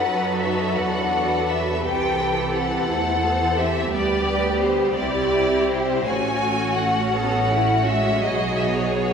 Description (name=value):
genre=classical, slow romantic movement for string orchestra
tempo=56 BPM (dotted quarters)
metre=6/8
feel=rubato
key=unclear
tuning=A4 = 440 Hz
part: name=rich studio violin section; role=melody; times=0.0-9.1 s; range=C5 to G#5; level=-24 LUFS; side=left 3 dB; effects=none
part: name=rich studio violin section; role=second line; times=0.0-9.1 s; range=E4 to C5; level=-27 LUFS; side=left 1 dB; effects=none
part: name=rich studio viola section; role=accompaniment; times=0.0-9.1 s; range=E3 to D#4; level=-25 LUFS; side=right 2 dB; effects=none
part: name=rich studio cello section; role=bass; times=0.0-9.1 s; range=E4 to B4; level=-28 LUFS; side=right 3 dB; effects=none
part: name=rich studio double bass section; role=bass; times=0.0-9.1 s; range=A1 to F#2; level=-28 LUFS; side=right 2 dB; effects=none
room=wet scoring stage reverb, RT60 1.6 s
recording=heard from further back in the room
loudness=-19 LUFS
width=side -6 dB against mid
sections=0.0-9.1 A section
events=none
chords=0.0 B7/F#; 0.8 E5; 1.8 Cmaj7; 3.9 G/D; 5.0 C; 6.1 F#m/A; 8.2 B